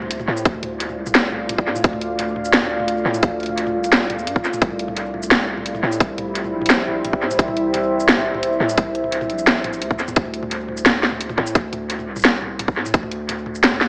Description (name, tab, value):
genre	half-time drum and bass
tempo	173 BPM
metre	4/4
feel	half-time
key	D minor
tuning	A4 = 440 Hz
part	deep dark ambient pad	sustained chords	0.0-10.2 s	G3 to F5	-26 LUFS	equal	chorus, built-in reverb, vintage 12-bit sampler grit, sidechain pumping
part	long sustained 808-style bass	bass	0.0-13.9 s	Bb1 to A2	-31 LUFS	equal	none
part	drum and bass drum kit	drums	0.0-13.9 s	hi-hat, shaker, snare drum, toms	-22 LUFS	equal	overdrive, studio reverb, dub echo
part	electronic kick drum	drums	0.5-13.0 s	none	-19 LUFS	equal	overdrive, studio reverb
room	moderate plate reverb, RT60 2.0 s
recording	echo-heavy mix, AM radio sound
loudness	-20 LUFS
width	mono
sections	0.0-10.2 A section; 10.2-13.9 A section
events	drop 0.0-10.2, 10.2-13.9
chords	0.0 Dm; 4.6 C; 10.2 D5